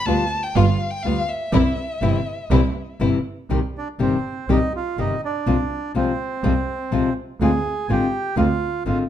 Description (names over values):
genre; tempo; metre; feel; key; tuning
tango; 123 BPM; 4/4; rubato; C major, C minor from 3.5 s; A4 = 440 Hz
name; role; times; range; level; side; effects
rich violin; second line; 0.0-3.0 s; E5 to A5; -27 LUFS; left 2 dB; none
nylon-string guitar; accompaniment; 0.1-9.0 s; C3 to G4; -22 LUFS; left 5 dB; none
rich studio string section; stabs; 0.1-3.2 s; G3 to F4; -30 LUFS; right 4 dB; none
clear double bass; bass; 0.1-9.1 s; G1 to D2; -22 LUFS; right 3 dB; none
bandoneon; melody; 3.8-9.0 s; C4 to Ab5; -26 LUFS; right 4 dB; none
room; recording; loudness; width
moderate large studio reverb, RT60 0.9 s; dark, warm production; -19 LUFS; side -10 dB against mid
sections
0.0-3.5 A section; 3.5-9.1 B section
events
violin solo 0.0-3.5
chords
0.0 G7; 1.5 C; 3.5 Cm; 5.5 Fm/C; 7.4 Dm7b5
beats
0.07 0.55 1.04 | 1.53 2.02 2.51 3.00 | 3.50 3.99 4.48 4.97 | 5.46 5.95 6.43 6.92 | 7.41 7.89 8.38 8.86